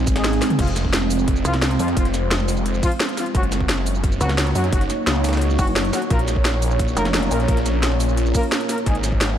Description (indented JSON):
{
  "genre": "dark technical drum and bass",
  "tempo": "174 BPM",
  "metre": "4/4",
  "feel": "straight",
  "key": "F phrygian",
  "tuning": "A4 = 438 Hz",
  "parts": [
    { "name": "deep dark ambient pad", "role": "sustained chords", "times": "0.0-9.4 s", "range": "Ab3 to Db5", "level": "-24 LUFS", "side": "right 1 dB", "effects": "chorus, built-in reverb, sidechain pumping" },
    { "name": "snarling distorted saw bass", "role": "bass", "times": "0.0-9.4 s", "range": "F1 to Gb2", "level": "-22 LUFS", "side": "equal", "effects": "distortion" },
    { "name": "breakbeat sampler-style drum kit", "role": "drums", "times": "0.1-9.3 s", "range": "hi-hat, snare drum", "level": "-34 LUFS", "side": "equal", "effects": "none" },
    { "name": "drum and bass drum kit", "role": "drums", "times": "0.1-9.4 s", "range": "crash cymbal, hi-hat, shaker, snare drum, toms", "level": "-25 LUFS", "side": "equal", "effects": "none" },
    { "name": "electronic kick drum", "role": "drums", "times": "0.1-9.2 s", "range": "none", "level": "-21 LUFS", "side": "equal", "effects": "none" },
    { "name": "mellow brass ensemble", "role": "stabs", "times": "0.2-8.9 s", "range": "F3 to Bb4", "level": "-28 LUFS", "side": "left 1 dB", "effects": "diffuse ambient delay" },
    { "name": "pulsing pluck wobble bass", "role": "bass", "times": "1.4-1.8, 4.2-7.3 s", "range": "F1 to Db2", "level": "-21 LUFS", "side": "equal", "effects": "chorus" }
  ],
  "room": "moderate cathedral reverb, RT60 6.0 s",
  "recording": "dreamy mix soaked in reverb",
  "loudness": "-17 LUFS",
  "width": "side -10 dB against mid",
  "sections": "0.0-9.4 A section",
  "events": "drum fill 0.4",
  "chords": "0.0 Ab; 0.6 Fm; 3.3 Gb6; 6.1 Bbm; 8.9 Ab"
}